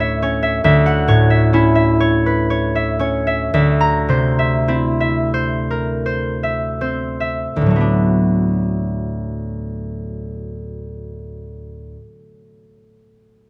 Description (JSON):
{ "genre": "classical, solo harp piece", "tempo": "25-47 BPM (dotted quarters)", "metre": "6/8", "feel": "rubato", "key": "D mixolydian", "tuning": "A4 = 440 Hz", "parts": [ { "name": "concert harp", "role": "solo", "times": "0.0-12.2 s", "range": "D2 to Bb5", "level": "-18 LUFS", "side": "equal", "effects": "none" } ], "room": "little or no reverb", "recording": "close, detailed microphones", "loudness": "-17 LUFS", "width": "mono", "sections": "0.0-7.6 A section; 7.6-11.9 B section", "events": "slowing down 0.0-7.6", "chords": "0.0 Dmaj9; 3.6 C9/D; 7.6 D6" }